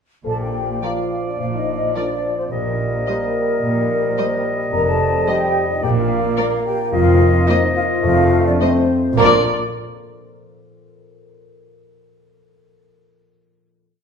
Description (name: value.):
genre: cinematic, playful, whimsical film cue.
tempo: 108 BPM.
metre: 4/4.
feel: straight.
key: Bb major.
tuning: A4 = 439 Hz.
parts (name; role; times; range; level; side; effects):
dark French horn section; sustained chords; 0.2-9.4 s; Bb3 to Bb4; -22 LUFS; left 2 dB; none.
bright clarinet; second line; 0.3-9.4 s; D5 to Eb5; -26 LUFS; left 1 dB; none.
mellow large flute ensemble; second line; 0.3-9.5 s; Bb4 to Bb5; -24 LUFS; equal; none.
warm bassoon; accompaniment; 0.3-9.4 s; F3 to Bb3; -24 LUFS; right 2 dB; none.
concert harp; arpeggios; 0.3-9.5 s; F2 to G5; -26 LUFS; left 6 dB; none.
muted chamber cello section; bass; 0.3-9.5 s; F2 to Bb2; -25 LUFS; right 2 dB; none.
muted studio double bass section; bass; 0.3-9.5 s; F1 to Bb1; -25 LUFS; right 4 dB; none.
muted chamber violin section; melody; 0.8-9.5 s; D5 to Eb5; -23 LUFS; left 4 dB; none.
muted chamber violin section; second line; 0.8-9.5 s; Bb4 to C5; -25 LUFS; right 2 dB; none.
muted chamber viola section; accompaniment; 0.8-9.5 s; F3 to F4; -29 LUFS; right 2 dB; none.
room: wet recital hall reverb, RT60 1.3 s.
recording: minimal, uncompressed stereo recording.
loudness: -15 LUFS.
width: side -6 dB against mid.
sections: 0.3-9.2 A section; 9.2-11.4 final chord.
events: none.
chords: 0.3 Bb; 2.5 Cm7/Bb; 4.7 Fsus2; 5.8 Bb; 6.9 F7sus4; 8.0 F7; 9.2 Bb.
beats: | 0.26 0.83 1.39 1.96 | 2.51 3.07 3.62 4.17 | 4.72 5.28 5.83 6.38 | 6.93 7.48 8.04 8.61 | 9.18.